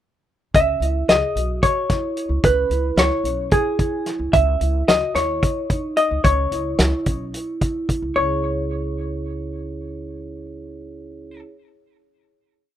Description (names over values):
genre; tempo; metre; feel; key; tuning
progressive instrumental, band music in an uneven meter; 220 BPM (eighths); 7/8; straight; C# minor; A4 = 440 Hz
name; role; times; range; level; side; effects
vibraphone with soft mallets; arpeggios; 0.5-11.5 s; C#4 to C#5; -29 LUFS; right 3 dB; ping-pong delay
upright bass; bass; 0.5-11.4 s; B1 to D#2; -24 LUFS; equal; none
warm soul drum kit; drums; 0.5-8.0 s; hi-hat, kick drum, snare drum; -20 LUFS; equal; none
vintage hollow-body jazz guitar; melody; 0.6-11.4 s; G#4 to E5; -20 LUFS; left 1 dB; ping-pong delay
room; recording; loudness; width
light reverb; rough home demo mix; -18 LUFS; side -11 dB against mid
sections
0.5-8.2 A section; 8.2-12.0 final chord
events
none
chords
0.5 C#m7; 4.3 F#5/C#; 6.2 C#m7; 8.2 C#m